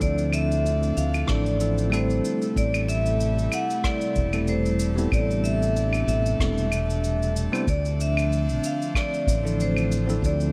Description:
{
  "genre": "sunset chillout",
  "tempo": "94 BPM",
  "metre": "4/4",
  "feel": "swing 55% on 16ths",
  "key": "D minor",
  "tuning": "A4 = 436 Hz",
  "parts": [
    { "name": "vibraphone with medium hard mallets", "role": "melody", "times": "0.0-10.5 s", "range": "C5 to F#5", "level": "-31 LUFS", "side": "equal", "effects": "delay" },
    { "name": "bell-like tine electric piano", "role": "accompaniment", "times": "0.0-10.5 s", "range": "F3 to C5", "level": "-31 LUFS", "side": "equal", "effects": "digital delay" },
    { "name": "airy breathy pad", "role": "sustained chords", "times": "0.0-10.5 s", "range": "C3 to A4", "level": "-33 LUFS", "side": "equal", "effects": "chorus" },
    { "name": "fretless electric bass", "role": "bass", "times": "0.0-10.5 s", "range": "E1 to D2", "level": "-27 LUFS", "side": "equal", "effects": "subtle chorus" },
    { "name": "cabasa, claves and rim click", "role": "drums", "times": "0.0-10.5 s", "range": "none", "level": "-36 LUFS", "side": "equal", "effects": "gated reverb" },
    { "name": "electronic kick drum", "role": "drums", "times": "0.0-10.4 s", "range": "none", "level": "-28 LUFS", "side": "equal", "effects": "overdrive" }
  ],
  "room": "light reverb, small room ambience",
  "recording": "bright 1980s-style digital production",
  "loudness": "-24 LUFS",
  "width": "mono",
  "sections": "0.0-10.5 A section",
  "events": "none",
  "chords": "0.0 Dm9; 2.2 Am9; 7.7 Dm9"
}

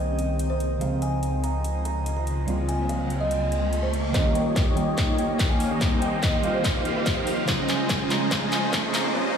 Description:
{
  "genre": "future bass",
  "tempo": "144 BPM",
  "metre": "4/4",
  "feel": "half-time",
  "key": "unclear",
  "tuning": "A4 = 440 Hz",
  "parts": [
    { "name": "kalimba", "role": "melody", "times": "0.0-9.1 s", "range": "C5 to Bb5", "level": "-30 LUFS", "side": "right 1 dB", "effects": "sidechain pumping, low-pass filter, ping-pong delay" },
    { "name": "glassy digital keys", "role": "accompaniment", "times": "0.0-9.2 s", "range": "Db3 to C5", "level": "-31 LUFS", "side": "right 2 dB", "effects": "chorus, sidechain pumping" },
    { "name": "shimmering ambient pad", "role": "sustained chords", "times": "0.0-9.1 s", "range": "Eb2 to G5", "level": "-36 LUFS", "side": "left 2 dB", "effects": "chorus, built-in reverb, phaser, sidechain pumping" },
    { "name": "wide detuned saw bass", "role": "bass", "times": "0.0-4.1 s", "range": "C2 to Db2", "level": "-27 LUFS", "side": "left 1 dB", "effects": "chorus, sidechain pumping" },
    { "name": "downlifter and riser", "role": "sound effects", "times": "0.0-9.1 s", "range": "none", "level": "-34 LUFS", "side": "left 1 dB", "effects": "none" },
    { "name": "dubstep drum kit", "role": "drums", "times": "0.2-9.0 s", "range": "handclaps, hi-hat", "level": "-30 LUFS", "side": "left 1 dB", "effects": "high-pass filter on snare, high-pass filter on hats, high-pass filter on cymbals" },
    { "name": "supersaw chords", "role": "riff", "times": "4.1-9.4 s", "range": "G3 to F5", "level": "-26 LUFS", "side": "equal", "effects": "phaser, lush chorus, sidechain pumping, low-pass filter" },
    { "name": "electronic kick drum", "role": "drums", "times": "4.1-8.8 s", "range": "none", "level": "-26 LUFS", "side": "left 1 dB", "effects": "distortion" }
  ],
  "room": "light reverb, digital ambience",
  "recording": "played on a big sound system in a bare room, stone room reverb, high-pass filter",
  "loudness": "-22 LUFS",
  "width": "side -7 dB against mid",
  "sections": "0.0-4.1 A section; 4.1-9.4 B section",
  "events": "riser 1.9-4.1, 4.1-9.1; build-up 4.1-9.4; drum fill 4.1-9.1; filter sweep on supersaw synth 4.1-9.4; filter sweep on kalimba 4.1-9.4; filter sweep 4.1-9.4",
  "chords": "0.0 Cm7; 0.8 Dbmaj9; 2.5 Bbm69/Db; 4.1 Eb7; 5.8 Cm7; 7.5 Dbmaj9"
}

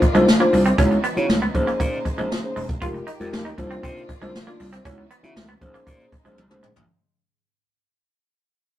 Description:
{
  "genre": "early-eighties boogie funk",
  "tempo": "118 BPM",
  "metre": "4/4",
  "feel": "straight",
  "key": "unclear",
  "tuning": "A4 = 441 Hz",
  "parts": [
    { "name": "mellow tine electric piano", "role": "accompaniment", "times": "0.0-6.7 s", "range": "Ab3 to Fb5", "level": "-23 LUFS", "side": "left 1 dB", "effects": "none" },
    { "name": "warm studio string section", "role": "sustained chords", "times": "0.0-6.9 s", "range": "Db3 to D5", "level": "-34 LUFS", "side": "left 2 dB", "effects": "none" },
    { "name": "semi-hollow electric guitar", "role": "riff", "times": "0.0-6.7 s", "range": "Ab3 to F4", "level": "-26 LUFS", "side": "right 2 dB", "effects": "none" },
    { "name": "jazz brush drum kit", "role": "drums", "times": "0.0-6.9 s", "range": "hi-hat, kick drum, snare drum, toms", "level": "-22 LUFS", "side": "equal", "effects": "none" },
    { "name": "gritty slap bass", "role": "bass", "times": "0.1-6.8 s", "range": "E1 to Db3", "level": "-24 LUFS", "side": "equal", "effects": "overdrive" }
  ],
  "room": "moderate small room reverb, RT60 0.6 s",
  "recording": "rough rehearsal-room recording, tube saturation",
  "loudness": "-18 LUFS",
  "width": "side -13 dB against mid",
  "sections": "0.0-6.9 A section",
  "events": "fade-out 0.0-6.9; drum fill 6.4-6.9",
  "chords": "0.0 Cm11; 0.8 Dbm11; 1.5 Bbm11; 2.8 Fm11; 3.6 Cm11; 4.8 Dbm11; 5.6 Bbm11"
}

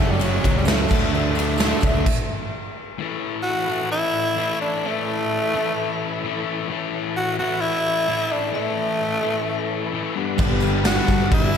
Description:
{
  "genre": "classic rock",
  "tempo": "130 BPM",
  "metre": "4/4",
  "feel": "straight",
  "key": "A mixolydian",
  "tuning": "A4 = 439 Hz",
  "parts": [
    { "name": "growling tenor saxophone", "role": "melody", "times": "0.0-11.6 s", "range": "F#3 to F#4", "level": "-24 LUFS", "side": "right 1 dB", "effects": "digital delay" },
    { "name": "picked plugged-in twelve-string acoustic guitar", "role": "accompaniment", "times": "0.0-2.1, 10.4-11.6 s", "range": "F#2 to G4", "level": "-32 LUFS", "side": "left 5 dB", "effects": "none" },
    { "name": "bright tonewheel organ", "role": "sustained chords", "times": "0.0-11.6 s", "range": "E3 to B4", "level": "-34 LUFS", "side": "right 1 dB", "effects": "slow rotary speaker, overdrive, chorus vibrato" },
    { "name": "distorted electric guitar", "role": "riff", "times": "0.0-11.6 s", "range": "F#2 to D4", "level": "-26 LUFS", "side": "left 9 dB", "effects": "distortion, slapback echo" },
    { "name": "overdriven electric guitar", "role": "riff", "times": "0.0-2.1, 10.4-11.6 s", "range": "F#2 to G4", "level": "-30 LUFS", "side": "right 1 dB", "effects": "none" },
    { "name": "overdriven semi-hollow guitar", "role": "riff", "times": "0.0-2.0, 10.4-11.6 s", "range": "F#2 to B4", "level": "-27 LUFS", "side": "right 11 dB", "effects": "none" },
    { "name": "overdriven picked electric bass", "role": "bass", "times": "0.0-2.0, 10.4-11.6 s", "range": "F#1 to G2", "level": "-24 LUFS", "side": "equal", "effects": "none" },
    { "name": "big rock drum kit", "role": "drums", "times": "0.2-2.2, 10.4-11.6 s", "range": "crash cymbal, kick drum, ride cymbal, snare drum", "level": "-22 LUFS", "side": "equal", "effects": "none" },
    { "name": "tambourine", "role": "percussion", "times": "0.2-1.9, 10.4-11.6 s", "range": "none", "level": "-43 LUFS", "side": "right 7 dB", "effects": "none" }
  ],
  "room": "moderate lush hall reverb, RT60 1.8 s",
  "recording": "big arena sound",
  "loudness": "-19 LUFS",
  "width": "side -7 dB against mid",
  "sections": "0.0-3.0 A section; 3.0-11.6 B section",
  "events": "stop 2.1-3.0",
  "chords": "0.0 F#m; 0.9 D; 3.0 A; 10.2 G"
}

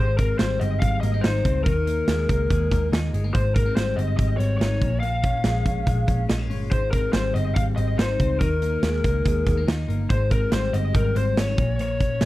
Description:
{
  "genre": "jangly indie pop",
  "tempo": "142 BPM",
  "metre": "4/4",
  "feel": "straight",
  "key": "Ab major",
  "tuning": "A4 = 440 Hz",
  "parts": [
    { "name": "lead guitar through a small cranked amp", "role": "melody", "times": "0.0-12.3 s", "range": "Bb4 to F5", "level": "-26 LUFS", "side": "left 2 dB", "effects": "overdrive" },
    { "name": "twelve-string electric guitar", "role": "arpeggios", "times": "0.0-12.3 s", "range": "Ab2 to F4", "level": "-28 LUFS", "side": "left 3 dB", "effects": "none" },
    { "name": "vintage muted picked electric bass", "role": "bass", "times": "0.0-12.3 s", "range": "G1 to Eb2", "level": "-24 LUFS", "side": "equal", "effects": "none" },
    { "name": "big rock drum kit", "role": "drums", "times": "0.2-12.3 s", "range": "hi-hat, kick drum, snare drum", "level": "-24 LUFS", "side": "right 1 dB", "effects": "none" }
  ],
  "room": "small room reverb",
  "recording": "dry, close 1970s-style studio recording",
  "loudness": "-20 LUFS",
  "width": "side -16 dB against mid",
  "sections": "0.0-12.3 A section",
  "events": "none",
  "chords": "0.0 Abmaj7; 1.7 Ebsus4; 3.3 Abmaj7; 4.8 Bbm7; 6.7 Abmaj7; 8.4 Ebsus4; 10.1 Abmaj7; 11.6 Bbm"
}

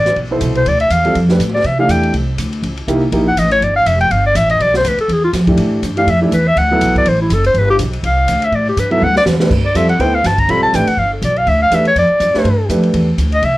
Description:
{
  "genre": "jazz, small-group swing and bop",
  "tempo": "244 BPM",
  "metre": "4/4",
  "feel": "swing 57% on 8ths",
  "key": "G mixolydian",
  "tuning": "A4 = 441 Hz",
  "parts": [
    { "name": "warm clarinet", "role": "melody", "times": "0.0-13.6 s", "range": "E4 to B5", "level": "-14 LUFS", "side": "left 1 dB", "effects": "none" },
    { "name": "upright bass", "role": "bass", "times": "0.0-13.6 s", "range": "F1 to C3", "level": "-16 LUFS", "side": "equal", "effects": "none" },
    { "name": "open jazz drum kit", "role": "drums", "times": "0.1-13.5 s", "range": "crash cymbal, hi-hat, kick drum, ride cymbal, snare drum, toms", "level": "-23 LUFS", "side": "equal", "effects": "none" },
    { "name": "warm baby grand piano", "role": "accompaniment", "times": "0.3-3.3, 5.5-13.1 s", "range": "B2 to C5", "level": "-17 LUFS", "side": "right 1 dB", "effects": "none" }
  ],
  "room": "light reverb",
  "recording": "worn, warbling old tape, cassette tape, warbly pitch drift",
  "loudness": "-11 LUFS",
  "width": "side -17 dB against mid",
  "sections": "0.0-9.5 A section; 9.5-13.6 A section",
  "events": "clarinet solo 0.0-13.6; drum fill 9.0-9.5",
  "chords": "0.0 G9 (rootless); 1.6 Cadd9; 2.6 C#dim7; 3.6 Gsus2; 4.6 Bm; 5.1 E7(no3); 6.6 Dadd9; 7.5 G7; 8.5 A5; 9.0 Dsus2; 9.5 G9"
}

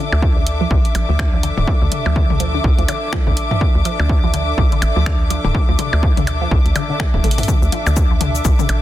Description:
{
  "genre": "minimal techno",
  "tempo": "124 BPM",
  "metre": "4/4",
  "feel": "swing 59% on 16ths",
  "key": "unclear",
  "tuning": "A4 = 441 Hz",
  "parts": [
    { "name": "resonant blip pluck", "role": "riff", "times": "0.0-8.6 s", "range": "A2 to A3", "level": "-25 LUFS", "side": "equal", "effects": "phaser, sidechain pumping, ping-pong delay" },
    { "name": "dark studio string section", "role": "texture", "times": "0.0-8.8 s", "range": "D4 to D6", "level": "-23 LUFS", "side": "left 1 dB", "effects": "sidechain pumping" },
    { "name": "hollow knocking FM bass", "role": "bass", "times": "0.1-8.8 s", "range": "D1 to D2", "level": "-18 LUFS", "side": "equal", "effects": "sidechain pumping" },
    { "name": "electronic percussion blips and toms", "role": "percussion", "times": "0.1-8.8 s", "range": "none", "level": "-23 LUFS", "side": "left 3 dB", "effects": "none" },
    { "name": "electronic kick drum", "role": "drums", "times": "0.2-8.6 s", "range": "none", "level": "-17 LUFS", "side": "equal", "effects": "none" },
    { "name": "punchy analog drum machine", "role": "drums", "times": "0.5-8.8 s", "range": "finger snaps, hi-hat, shaker", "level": "-26 LUFS", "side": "equal", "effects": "soft clipping on snare" }
  ],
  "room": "light reverb, digital ambience",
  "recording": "dense, heavily limited modern master",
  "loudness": "-14 LUFS",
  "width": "side -14 dB against mid",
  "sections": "0.0-7.5 A section; 7.5-8.8 B section",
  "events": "drum fill 7.2; drop 7.5-8.8",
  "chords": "0.0 D5"
}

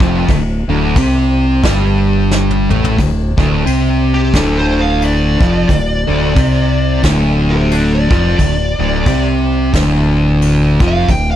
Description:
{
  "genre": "stoner and doom metal",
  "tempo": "89 BPM",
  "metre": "4/4",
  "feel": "swing 58% on 8ths",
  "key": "D minor",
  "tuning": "A4 = 440 Hz",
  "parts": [
    { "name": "thick fuzz guitar", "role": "riff", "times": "0.0-11.4 s", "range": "D2 to C4", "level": "-14 LUFS", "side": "equal", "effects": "distortion" },
    { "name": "growling fingered electric bass", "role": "bass", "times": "0.0-11.4 s", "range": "D1 to C2", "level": "-16 LUFS", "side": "equal", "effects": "overdrive" },
    { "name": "soft brush drum kit", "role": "drums", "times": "0.0-11.3 s", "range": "crash cymbal, kick drum, snare drum, toms", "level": "-18 LUFS", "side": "equal", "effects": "none" },
    { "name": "fuzz lead guitar", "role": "melody", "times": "4.1-11.4 s", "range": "G4 to G5", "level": "-20 LUFS", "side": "left 1 dB", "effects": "distortion, tape echo" }
  ],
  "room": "little or no reverb",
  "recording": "dark, warm production",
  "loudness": "-11 LUFS",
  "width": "side -11 dB against mid",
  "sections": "0.0-3.0 A section; 3.0-11.4 B section",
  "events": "drum fill 2.3-3.0; lead electric guitar solo 3.0-11.4",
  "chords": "0.0 Dm"
}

